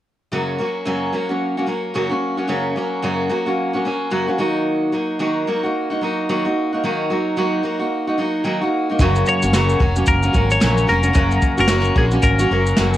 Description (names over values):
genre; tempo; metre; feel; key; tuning
acoustic pop; 111 BPM; 4/4; swing 60% on 16ths; unclear; A4 = 441 Hz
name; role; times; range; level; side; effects
picked steel-string acoustic guitar; accompaniment; 0.3-13.0 s; Gb2 to Gb4; -18 LUFS; equal; cassette tape
mellow fretless electric bass; bass; 9.0-13.0 s; F1 to Bb1; -19 LUFS; equal; none
jazz brush drum kit; drums; 9.0-13.0 s; kick drum, shaker, snare drum; -20 LUFS; equal; cassette tape
twelve-string electric guitar; melody; 9.3-13.0 s; Ab4 to Db5; -20 LUFS; left 2 dB; cassette tape
room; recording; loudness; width
moderate spring reverb, RT60 1.6 s, studio reverb; home recording on cassette; -16 LUFS; side -13 dB against mid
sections
0.3-9.0 A section; 9.0-13.0 B section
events
none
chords
0.3 Gb; 4.4 Ebm; 9.0 Gb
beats
| 0.32 0.86 1.40 1.94 | 2.49 3.03 3.57 4.12 | 4.66 5.20 5.74 6.28 | 6.83 7.37 7.91 8.45 | 8.99 9.53 10.07 10.61 | 11.15 11.69 12.23 12.77